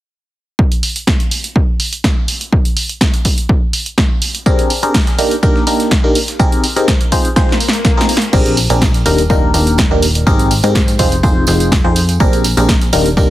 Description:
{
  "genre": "piano house",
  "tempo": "124 BPM",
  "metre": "4/4",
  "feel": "straight",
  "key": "Eb major",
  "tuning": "A4 = 439 Hz",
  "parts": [
    { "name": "electronic kick drum", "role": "drums", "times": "0.6-13.3 s", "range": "none", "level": "-13 LUFS", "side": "equal", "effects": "none" },
    { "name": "punchy analog drum machine", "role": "drums", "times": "0.7-13.1 s", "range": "crash cymbal, hi-hat, snare drum", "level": "-17 LUFS", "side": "right 1 dB", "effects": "none" },
    { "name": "barking FM electric piano", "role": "riff", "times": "4.5-13.3 s", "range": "Bb3 to C5", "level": "-15 LUFS", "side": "equal", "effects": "phaser, sidechain pumping, tape echo" },
    { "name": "breakbeat sampler-style drum kit", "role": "drums", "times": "4.5-8.2 s", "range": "hi-hat, snare drum, tambourine", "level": "-28 LUFS", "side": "right 2 dB", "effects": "none" },
    { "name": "swell", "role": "sound effects", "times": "7.6-8.3 s", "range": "none", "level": "-22 LUFS", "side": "left 4 dB", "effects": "none" },
    { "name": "plucky analog bass", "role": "bass", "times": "8.3-13.3 s", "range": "Eb1 to Ab2", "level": "-15 LUFS", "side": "equal", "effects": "sidechain pumping" },
    { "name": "tambourine", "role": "percussion", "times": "8.3-13.3 s", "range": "none", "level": "-27 LUFS", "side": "right 6 dB", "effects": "none" }
  ],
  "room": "digital ambience",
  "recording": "heavily compressed radio sound, multiband compression",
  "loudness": "-11 LUFS",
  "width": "side -14 dB against mid",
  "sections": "0.6-8.3 A section; 8.3-13.3 B section",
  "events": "drum fill 7.4-8.3; swell 7.6-8.3",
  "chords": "0.6 N.C.; 4.5 Bb13; 5.2 Ebmaj7; 6.4 Abmaj9; 7.1 Fm7; 8.3 Bb13; 9.1 Ebmaj7; 10.3 Abmaj9; 11.0 Fm7; 12.2 Bb13",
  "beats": "| 0.59 1.07 1.56 2.04 | 2.52 3.01 3.49 3.98 | 4.46 4.94 5.43 5.91 | 6.40 6.88 7.36 7.85 | 8.33 8.81 9.30 9.78 | 10.27 10.75 11.23 11.72 | 12.20 12.69 13.17"
}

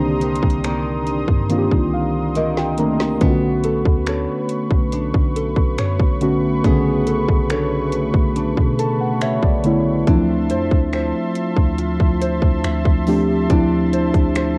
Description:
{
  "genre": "contemporary R&B",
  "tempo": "70 BPM",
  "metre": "4/4",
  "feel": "straight",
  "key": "unclear",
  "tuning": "A4 = 444 Hz",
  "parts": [
    { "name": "muted felt-like synth keys", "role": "accompaniment", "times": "0.0-14.6 s", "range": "C#3 to Bb5", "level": "-22 LUFS", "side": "equal", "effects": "chorus, cassette tape" },
    { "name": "warm analog pad", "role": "sustained chords", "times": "0.0-14.6 s", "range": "F3 to Eb6", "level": "-30 LUFS", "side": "equal", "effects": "chorus, sidechain pumping, cassette tape" },
    { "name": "nylon-string guitar", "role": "arpeggios", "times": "0.0-14.6 s", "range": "C3 to E5", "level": "-29 LUFS", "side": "equal", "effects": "cassette tape" },
    { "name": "soft 808-style bass", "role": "bass", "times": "0.0-14.6 s", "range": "B1 to B2", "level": "-28 LUFS", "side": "equal", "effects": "none" },
    { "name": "trap drum kit", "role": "drums", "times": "0.2-14.6 s", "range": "finger snaps, hi-hat, kick drum, snare drum", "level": "-20 LUFS", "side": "equal", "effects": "cassette tape" }
  ],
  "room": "little or no reverb",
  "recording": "home recording on cassette",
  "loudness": "-18 LUFS",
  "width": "mono",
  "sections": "0.0-3.2 A section; 3.2-14.6 B section",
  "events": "synth keys fill 1.5-3.2, 8.4-10.1; drum fill 2.4-3.2",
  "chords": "0.0 Cm9; 3.2 Bm9; 10.1 Dm9",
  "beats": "0.64 1.50 2.36 | 3.22 4.07 4.93 5.79 | 6.64 7.50 8.36 9.22 | 10.07 10.93 11.79 12.64 | 13.50 14.36"
}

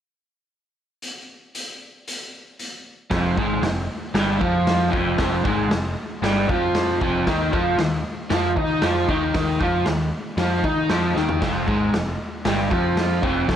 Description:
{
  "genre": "garage rock duo or trio",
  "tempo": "116 BPM",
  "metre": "4/4",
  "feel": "straight",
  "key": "F minor",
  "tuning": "A4 = 442 Hz",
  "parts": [
    { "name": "raw garage drum kit", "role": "drums", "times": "1.0-13.6 s", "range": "crash cymbal, hi-hat, kick drum, snare drum, toms", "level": "-26 LUFS", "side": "equal", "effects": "none" },
    { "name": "crunchy overdriven guitar", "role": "riff", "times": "3.1-13.6 s", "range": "F2 to Eb5", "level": "-21 LUFS", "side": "equal", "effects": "none" },
    { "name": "growling picked electric bass", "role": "bass", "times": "3.1-13.6 s", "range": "F1 to Eb3", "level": "-26 LUFS", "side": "equal", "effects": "overdrive" }
  ],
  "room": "light reverb, small room ambience",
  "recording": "cassette tape",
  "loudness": "-19 LUFS",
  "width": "side -9 dB against mid",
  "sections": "1.0-3.1 A section; 3.1-13.6 B section",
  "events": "drum fill 11.2",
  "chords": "1.0 N.C.; 3.1 Fm; 7.3 Ebsus2; 11.4 Fm",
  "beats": "| 1.02 1.54 2.06 2.59 | 3.11 3.63 4.15 4.67 | 5.19 5.71 6.23 6.75 | 7.27 7.79 8.31 8.83 | 9.35 9.86 10.38 10.90 | 11.42 11.93 12.45 12.97 | 13.48"
}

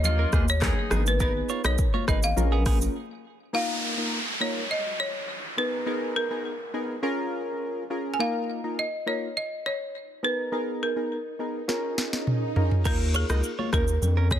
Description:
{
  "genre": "afrobeats",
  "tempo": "103 BPM",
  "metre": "4/4",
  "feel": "straight",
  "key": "unclear",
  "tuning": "A4 = 440 Hz",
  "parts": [
    { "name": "folk marimba with hard mallets", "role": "melody", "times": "0.0-14.4 s", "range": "Ab4 to Ab5", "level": "-29 LUFS", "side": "equal", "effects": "digital delay" },
    { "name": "mellow horn section", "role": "second line", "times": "0.0-1.0 s", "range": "Bb3 to Ab4", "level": "-33 LUFS", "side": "equal", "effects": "none" },
    { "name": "round analog bass", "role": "bass", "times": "0.0-2.9, 12.9-14.4 s", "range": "Ab1 to F2", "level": "-24 LUFS", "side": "equal", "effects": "none" },
    { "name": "afro-pop drum kit", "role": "drums", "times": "0.0-2.9, 11.7-14.4 s", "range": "crash cymbal, handclaps, hi-hat, kick drum, rim click, shaker, snare drum, toms", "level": "-26 LUFS", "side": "equal", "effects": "soft clipping on snare" },
    { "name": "congas", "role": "percussion", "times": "0.0-2.8, 13.6-14.4 s", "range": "none", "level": "-35 LUFS", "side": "left 6 dB", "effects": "none" },
    { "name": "direct-recorded clean electric guitar", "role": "riff", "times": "0.2-2.8, 12.9-14.4 s", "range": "Cb4 to Eb5", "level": "-35 LUFS", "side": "right 8 dB", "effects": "digital delay" },
    { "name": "warm analog keys", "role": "accompaniment", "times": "0.9-13.9 s", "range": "Bb3 to Cb5", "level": "-30 LUFS", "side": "equal", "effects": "chorus" },
    { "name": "downlifter and swell", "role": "sound effects", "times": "3.5-12.9 s", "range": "none", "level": "-34 LUFS", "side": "right 1 dB", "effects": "none" }
  ],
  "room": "light reverb",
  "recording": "dense, heavily limited modern master",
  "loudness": "-24 LUFS",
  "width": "side -10 dB against mid",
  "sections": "0.0-3.5 A section; 3.5-12.9 B section; 12.9-14.4 C section",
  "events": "break 3.0-3.5; swell 11.2-12.9; drum fill 11.7-12.9",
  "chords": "0.0 Ebsus2; 0.9 Abmadd9; 2.4 Bbm7; 3.5 Ebsus2; 5.6 Abmadd9; 7.0 Bbm7; 8.2 Ebsus2; 10.2 Abmadd9; 11.7 Bbm7; 12.9 Ebsus2",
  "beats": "0.04 0.62 | 1.20 1.79 2.37 2.95 | 3.53 4.12 4.70 5.28 | 5.86 6.45 7.03 7.61 | 8.19 8.78 9.36 9.94 | 10.52 11.11 11.69 12.27 | 12.85 13.44 14.02"
}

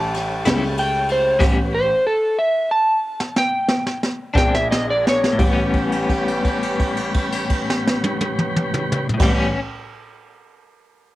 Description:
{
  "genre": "slow blues",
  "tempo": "57-64 BPM (dotted quarters)",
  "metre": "12/8",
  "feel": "straight",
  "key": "A mixolydian",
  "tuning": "A4 = 438 Hz",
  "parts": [
    { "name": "electric slide guitar", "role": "melody", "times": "0.0-5.4 s", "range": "A4 to A5", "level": "-19 LUFS", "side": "equal", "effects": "cassette tape" },
    { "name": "tonewheel organ", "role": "sustained chords", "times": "0.0-9.5 s", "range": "C#4 to B4", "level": "-27 LUFS", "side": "equal", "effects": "slow rotary speaker, cassette tape" },
    { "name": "warm horn section", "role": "sustained chords", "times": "0.0-9.5 s", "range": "G3 to Ab4", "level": "-30 LUFS", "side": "right 1 dB", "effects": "cassette tape" },
    { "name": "dark baby grand piano", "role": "bass", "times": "0.0-9.5 s", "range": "A1 to C#2", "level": "-25 LUFS", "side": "left 1 dB", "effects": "none" },
    { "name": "jazz brush drum kit", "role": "drums", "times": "0.1-9.4 s", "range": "crash cymbal, kick drum, ride cymbal, snare drum, toms", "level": "-21 LUFS", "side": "equal", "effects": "cassette tape" },
    { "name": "clean electric guitar", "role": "accompaniment", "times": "0.5-9.6 s", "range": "A2 to E4", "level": "-24 LUFS", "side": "left 3 dB", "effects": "tremolo, cassette tape" }
  ],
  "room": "light reverb, studio ambience",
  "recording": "home recording on cassette",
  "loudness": "-17 LUFS",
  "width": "side -16 dB against mid",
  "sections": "0.0-5.4 A section; 5.4-9.6 B section",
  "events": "electric slide guitar solo 0.0-5.4; slowing down 0.1-5.4; drum fill 1.4-5.4; held note 5.4-9.2",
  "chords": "0.0 A7; 1.4 A9; 4.4 Bb9; 5.4 A9",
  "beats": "0.45 | 1.40 2.36 3.34 4.35 | 5.39 6.45 7.50 8.56"
}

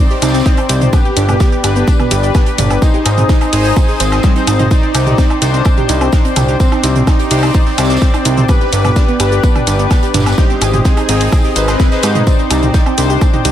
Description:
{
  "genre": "melodic techno",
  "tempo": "127 BPM",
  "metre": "4/4",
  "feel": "straight",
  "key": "C harmonic minor",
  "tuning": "A4 = 440 Hz",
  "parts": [
    { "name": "soft supersaw", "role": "melody", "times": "0.0-13.1 s", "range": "C4 to B4", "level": "-20 LUFS", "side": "equal", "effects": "sidechain pumping, tape echo" },
    { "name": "dark analog pad", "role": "sustained chords", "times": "0.0-13.5 s", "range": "C4 to Eb6", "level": "-22 LUFS", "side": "equal", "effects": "chorus, sidechain pumping" },
    { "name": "wide unison pluck", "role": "arpeggios", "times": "0.0-13.5 s", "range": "G3 to Eb5", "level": "-20 LUFS", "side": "moving between left 1 dB and right 5 dB", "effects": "auto-pan, sidechain pumping, ping-pong delay" },
    { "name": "analog synth brass", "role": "stabs", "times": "0.0-13.5 s", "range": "Ab3 to D5", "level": "-20 LUFS", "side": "left 4 dB", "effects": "chorus, sidechain pumping, ping-pong delay" },
    { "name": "house drum kit", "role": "drums", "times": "0.1-13.5 s", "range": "hi-hat, shaker, toms, woodblock", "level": "-19 LUFS", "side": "right 1 dB", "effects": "sidechain pumping on hats, studio reverb, sidechain pumping on perc, sidechain pumping on toms, sidechain pumping on cymbals" },
    { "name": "oversized low-tuned drum kit", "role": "drums", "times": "0.1-13.5 s", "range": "hi-hat, snare drum, tambourine", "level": "-28 LUFS", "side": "right 2 dB", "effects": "high-pass filter on hats, studio reverb, high-pass filter on snare, high-pass filter on perc, high-pass filter on room" },
    { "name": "fat analog bass", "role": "bass", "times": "0.2-13.5 s", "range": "G1 to Ab2", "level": "-14 LUFS", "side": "equal", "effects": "sidechain pumping" },
    { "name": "electronic kick drum", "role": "drums", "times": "0.5-13.3 s", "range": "none", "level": "-11 LUFS", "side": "equal", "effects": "studio reverb" }
  ],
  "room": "little or no reverb",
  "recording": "none",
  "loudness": "-10 LUFS",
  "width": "side -11 dB against mid",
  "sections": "0.0-13.5 A section",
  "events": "none",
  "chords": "0.0 Cmadd9; 0.9 G; 2.8 Ab; 4.7 Cmadd9; 8.5 G; 10.4 Ab; 12.3 Cmadd9",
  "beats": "0.46 | 0.93 1.40 1.88 2.35 | 2.82 3.29 3.77 4.24 | 4.71 5.18 5.66 6.13 | 6.60 7.07 7.54 8.02 | 8.49 8.96 9.44 9.91 | 10.38 10.85 11.32 11.80 | 12.27 12.74 13.21"
}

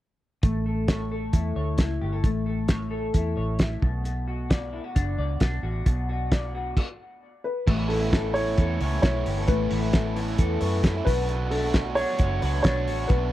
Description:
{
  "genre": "jangly indie pop",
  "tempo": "133 BPM",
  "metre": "4/4",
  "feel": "straight",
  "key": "unclear",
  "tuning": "A4 = 439 Hz",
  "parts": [
    { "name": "electric guitar through a small old amp", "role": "arpeggios", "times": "0.4-13.3 s", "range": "B2 to D5", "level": "-30 LUFS", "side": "left 3 dB", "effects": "wide subtle chorus, tape echo" },
    { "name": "vintage muted fingered electric bass", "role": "bass", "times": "0.4-13.3 s", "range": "F#1 to F#2", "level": "-28 LUFS", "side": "equal", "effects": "none" },
    { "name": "cloth-damped thuddy drum kit", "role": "drums", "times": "0.4-13.2 s", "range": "crash cymbal, hi-hat, kick drum, snare drum", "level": "-23 LUFS", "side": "equal", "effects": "none" },
    { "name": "dark upright piano", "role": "melody", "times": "7.4-13.3 s", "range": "A4 to C#5", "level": "-29 LUFS", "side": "left 1 dB", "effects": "none" },
    { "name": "biting overdriven guitar", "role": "accompaniment", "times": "7.7-13.3 s", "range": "A2 to F#4", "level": "-32 LUFS", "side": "right 7 dB", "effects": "none" }
  ],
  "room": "little or no reverb",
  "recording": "dry, close 1970s-style studio recording",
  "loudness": "-23 LUFS",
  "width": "side -14 dB against mid",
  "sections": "0.4-7.7 A section; 7.7-13.3 B section",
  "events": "stop 6.8-7.7",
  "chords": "0.4 A; 3.8 Bm7; 7.7 Aadd9; 11.1 Bm7",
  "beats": "| 0.43 0.88 1.33 1.79 | 2.24 2.69 3.14 3.60 | 4.05 4.50 4.96 5.41 | 5.86 6.32 6.77 7.22 | 7.68 8.13 8.58 9.03 | 9.49 9.94 10.39 10.84 | 11.29 11.75 12.20 12.65 | 13.10"
}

